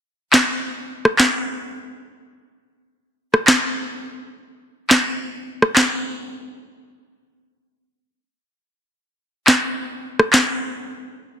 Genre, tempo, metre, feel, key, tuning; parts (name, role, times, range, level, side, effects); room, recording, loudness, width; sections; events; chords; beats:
dancehall; 105 BPM; 4/4; straight
electronic handclaps, snare drum and rim click; drums; 0.3-5.9, 9.5-10.5 s; -16 LUFS; equal
moderate plate reverb, RT60 2.0 s; dense, heavily limited modern master; -16 LUFS; side -8 dB against mid
0.0-11.4 A section
break 0.0-8.6
0.05 0.62 1.20 | 1.77 2.34 2.91 3.48 | 4.05 4.62 5.20 5.77 | 6.34 6.91 7.48 8.05 | 8.62 9.20 9.77 10.34